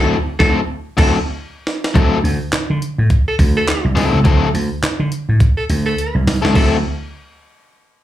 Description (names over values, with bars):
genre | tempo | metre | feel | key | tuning
funk | 104 BPM | 4/4 | swing 60% on 16ths | D mixolydian | A4 = 438 Hz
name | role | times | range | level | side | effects
warm tenor saxophone | second line | 0.0-6.8 s | A4 | -21 LUFS | right 1 dB | slapback echo
biting overdriven guitar | accompaniment | 0.0-6.8 s | F#3 to A4 | -18 LUFS | left 6 dB | slapback echo
vintage slap bass | bass | 0.0-6.8 s | C2 to D3 | -17 LUFS | right 1 dB | none
breakbeat sampler-style drum kit | drums | 0.4-6.7 s | crash cymbal, handclaps, hi-hat, kick drum, snare drum | -16 LUFS | equal | none
room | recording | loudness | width
little or no reverb | live gig heard through the venue's PA, club reverb | -14 LUFS | side -13 dB against mid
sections
0.0-2.0 A section; 2.0-6.6 B section; 6.6-8.0 C section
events
band accent 0.0-2.0; drum fill 1.4-2.0, 5.4-6.6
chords
0.0 D9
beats
0.23 0.80 1.38 | 1.95 2.53 3.10 3.68 | 4.25 4.83 5.40 5.98 | 6.55